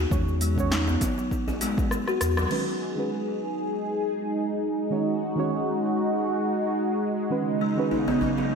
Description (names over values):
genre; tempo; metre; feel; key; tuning
organic downtempo; 100 BPM; 4/4; swing 55% on 16ths; G# minor pentatonic; A4 = 441 Hz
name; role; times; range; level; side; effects
deep mellow chord stab; accompaniment; 0.0-8.6 s; D#3 to C#5; -31 LUFS; right 4 dB; chorus, sidechain pumping, tape echo
buzzing kalimba; arpeggios; 0.0-2.5, 7.6-8.6 s; F#3 to G#4; -29 LUFS; left 2 dB; tape echo
round analog bass; bass; 0.0-2.5 s; E2; -25 LUFS; equal; sidechain pumping
quartz singing bowl; texture; 0.0-2.5 s; none; barely audible; none; none
deep house drum kit; drums; 0.1-2.6 s; cabasa, crash cymbal, hi-hat, rim click, snare drum; -31 LUFS; equal; none
electronic kick drum; drums; 0.1-1.9 s; none; -28 LUFS; equal; none
djembe; percussion; 0.1-2.5, 7.9-8.5 s; none; -34 LUFS; right 1 dB; none
warm analog pad; sustained chords; 2.5-8.6 s; C#3 to G#4; -26 LUFS; equal; chorus, vintage 12-bit sampler grit, sidechain pumping
room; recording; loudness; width
wet lush hall reverb, RT60 1.7 s, digital ambience; dreamy mix soaked in reverb; -24 LUFS; side -6 dB against mid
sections
0.0-2.5 A section; 2.5-8.6 B section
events
kick drops out 1.9-2.5; drum fill 1.9-2.5; band accent 2.4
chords
0.1 E; 2.5 G#m7; 7.3 C#sus2